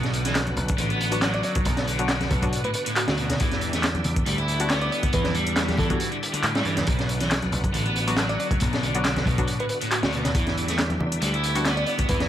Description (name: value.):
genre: breakbeat, breaks.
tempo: 138 BPM.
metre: 4/4.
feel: swing 54% on 16ths.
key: E minor.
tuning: A4 = 440 Hz.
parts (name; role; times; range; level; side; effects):
bright tonewheel organ; sustained chords; 0.0-12.3 s; D3 to F#4; -32 LUFS; equal; chorus vibrato, slow rotary speaker, sidechain pumping.
crunchy overdriven guitar; riff; 0.0-12.3 s; A2 to E4; -28 LUFS; equal; ping-pong delay.
overdriven picked electric bass; bass; 0.0-12.3 s; A1 to A2; -28 LUFS; equal; none.
crunchy breakbeat drum kit; drums; 0.0-12.3 s; hi-hat, kick drum, snare drum; -26 LUFS; equal; none.
punchy analog drum machine; drums; 0.0-12.3 s; handclaps, hi-hat; -30 LUFS; left 1 dB; none.
congas; percussion; 0.5-12.3 s; none; -32 LUFS; left 1 dB; none.
filtered dub chord stab; stabs; 1.1-11.7 s; F#3 to F#4; -32 LUFS; left 3 dB; chorus, ping-pong delay.
bell-like FM electric piano; melody; 1.3-12.3 s; F#4 to D5; -32 LUFS; right 1 dB; chorus, phaser, small speaker sound, ping-pong delay.
room: light reverb.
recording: vinyl crackle.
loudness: -21 LUFS.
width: side -11 dB against mid.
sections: 0.0-12.3 A section.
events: none.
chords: 0.0 Bm; 3.4 Em7; 6.9 Bm; 10.3 Em7.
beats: 0.35 0.79 1.22 | 1.65 2.09 2.52 2.96 | 3.39 3.83 4.26 4.70 | 5.13 5.57 6.00 6.44 | 6.87 7.31 7.74 8.18 | 8.61 9.05 9.48 9.91 | 10.35 10.79 11.22 11.65 | 12.09.